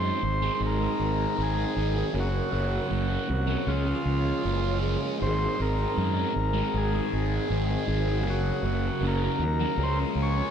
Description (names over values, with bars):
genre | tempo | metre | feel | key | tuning
rock | 79 BPM | 4/4 | straight | Ab mixolydian | A4 = 440 Hz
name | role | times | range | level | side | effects
combo organ | melody | 0.0-10.5 s | F4 to Db5 | -31 LUFS | equal | spring reverb, diffuse ambient delay
mellow tonewheel organ | sustained chords | 0.0-10.5 s | Db3 to Bb4 | -34 LUFS | right 4 dB | slow rotary speaker
fuzz guitar | riff | 0.0-10.5 s | Gb2 to Db4 | -31 LUFS | left 1 dB | distortion, phaser
fuzz fingered electric bass | bass | 0.0-10.4 s | Gb1 to Gb2 | -28 LUFS | equal | overdrive
room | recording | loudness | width
moderate plate reverb, RT60 2.7 s | dreamy mix soaked in reverb | -24 LUFS | side -8 dB against mid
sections
0.0-10.5 A section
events
none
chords
0.0 Ab7; 2.2 Gb; 3.7 Db6; 5.2 Ab7; 8.3 Gb; 9.8 Db6